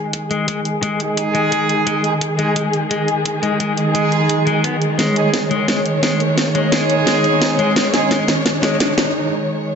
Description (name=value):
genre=dark technical drum and bass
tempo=173 BPM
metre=4/4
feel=straight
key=unclear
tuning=A4 = 440 Hz
part: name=dark studio string section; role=sustained chords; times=0.0-9.8 s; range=D#3 to C#5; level=-19 LUFS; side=equal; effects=sidechain pumping, low-pass filter
part: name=riser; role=sound effects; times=3.2-9.2 s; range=none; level=-26 LUFS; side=right 1 dB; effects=none
part: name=drum and bass drum kit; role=drums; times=0.1-9.0 s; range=hi-hat, snare drum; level=-20 LUFS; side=equal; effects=none
part: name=electronic kick drum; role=drums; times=0.1-8.9 s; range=none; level=-29 LUFS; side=right 1 dB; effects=none
part: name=electric guitar at the edge of break-up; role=arpeggios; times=0.3-8.9 s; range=G#3 to B3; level=-23 LUFS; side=left 4 dB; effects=sidechain pumping, low-pass filter, ping-pong delay
part: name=warm brass ensemble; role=stabs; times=1.0-8.1 s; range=G#3 to G#4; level=-21 LUFS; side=right 3 dB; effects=ping-pong delay
room=moderate lush hall reverb, RT60 2.0 s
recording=nothing above 7.9 kHz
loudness=-15 LUFS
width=side -6 dB against mid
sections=0.0-9.8 A section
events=build-up 0.0-9.8; filter sweep on string section 0.0-9.8; riser 3.2-9.2; drum fill 5.0-9.2; break 9.2-9.8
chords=0.0 G#5